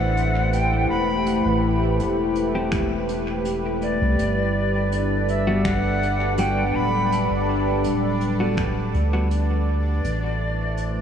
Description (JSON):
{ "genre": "ambient dub", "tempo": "82 BPM", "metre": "4/4", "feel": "straight", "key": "A dorian", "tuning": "A4 = 440 Hz", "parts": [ { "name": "silver concert flute", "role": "melody", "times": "0.0-11.0 s", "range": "D5 to B5", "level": "-27 LUFS", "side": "equal", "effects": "dub echo" }, { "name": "warm analog pad", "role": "sustained chords", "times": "0.0-11.0 s", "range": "G3 to D5", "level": "-24 LUFS", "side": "left 1 dB", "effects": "chorus" }, { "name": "warm sub bass", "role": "bass", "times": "0.0-11.0 s", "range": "D1 to D2", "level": "-24 LUFS", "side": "right 1 dB", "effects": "tube saturation" }, { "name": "vintage brush drum kit", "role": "drums", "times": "0.2-10.9 s", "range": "finger snaps, hi-hat", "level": "-38 LUFS", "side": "right 1 dB", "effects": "dub echo" }, { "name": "semi-hollow electric guitar", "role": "stabs", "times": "2.6-9.3 s", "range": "G3 to G4", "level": "-32 LUFS", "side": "left 2 dB", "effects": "none" }, { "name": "electronic kick drum", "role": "drums", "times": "2.7-8.7 s", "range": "none", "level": "-28 LUFS", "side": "equal", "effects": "overdrive" }, { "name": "bubbling stepped-filter texture", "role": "texture", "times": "4.9-11.0 s", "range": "D4 to D5", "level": "-33 LUFS", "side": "right 3 dB", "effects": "chorus, built-in reverb" } ], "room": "moderate huge ambient reverb, RT60 7.8 s", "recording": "dreamy mix soaked in reverb, studio reverb", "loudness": "-20 LUFS", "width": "side -8 dB against mid", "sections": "0.0-11.0 A section", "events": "fade-out 8.1-11.0", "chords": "0.0 Am7; 4.2 Gmaj7; 10.0 Am7" }